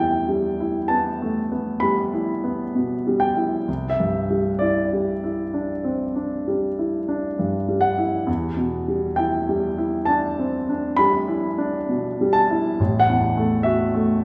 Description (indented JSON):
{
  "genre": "classical, impressionist solo piano",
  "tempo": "66 BPM",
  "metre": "5/4",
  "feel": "rubato",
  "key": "E minor",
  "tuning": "A4 = 440 Hz",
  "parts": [
    { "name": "warm grand piano", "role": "solo", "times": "0.0-14.2 s", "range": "A1 to B5", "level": "-22 LUFS", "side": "equal", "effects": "none" }
  ],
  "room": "wet recital hall reverb, RT60 1.7 s",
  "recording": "heard from further back in the room",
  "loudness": "-22 LUFS",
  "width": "mono",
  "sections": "0.0-14.2 A section",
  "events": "none",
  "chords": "0.0 Emadd9; 3.7 Cadd9; 8.3 Em7; 12.8 A5",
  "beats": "0.90 1.82 2.75 | 3.68 4.61 5.53 6.46 7.38 | 8.27 9.19 10.09 10.98 11.89 | 12.80 13.65"
}